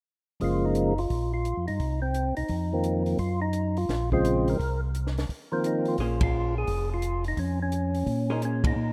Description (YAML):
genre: soul jazz organ trio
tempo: 172 BPM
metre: 4/4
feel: swing 64% on 8ths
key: Bb minor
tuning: A4 = 440 Hz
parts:
  - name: percussive tonewheel organ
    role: melody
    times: 0.4-8.9 s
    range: Db3 to Bb4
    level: -30 LUFS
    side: equal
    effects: slow rotary speaker, overdrive
  - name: mellow tonewheel organ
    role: bass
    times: 0.4-8.9 s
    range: F1 to Bb2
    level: -31 LUFS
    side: equal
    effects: overdrive, chorus vibrato, slow rotary speaker
  - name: compact cocktail drum kit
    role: drums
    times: 0.4-8.7 s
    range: hi-hat, kick drum, ride cymbal, snare drum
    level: -33 LUFS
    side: equal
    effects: none
  - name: archtop guitar, miked and amplified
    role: accompaniment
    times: 6.0-8.8 s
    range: Bb3 to C5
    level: -38 LUFS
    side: equal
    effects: none
room: light reverb, small room ambience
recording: rough home demo mix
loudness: -27 LUFS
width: mono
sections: 0.4-6.0 A section; 6.0-8.9 B section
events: band accent 6.2, 8.6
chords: 0.4 Gbmaj7; 1.1 Bb5; 1.8 Cm; 2.5 F7sus4; 3.2 Ebmadd9/Gb; 3.9 Bbm7; 4.6 Bbsus2/C; 5.3 F7sus4; 6.0 Bbm9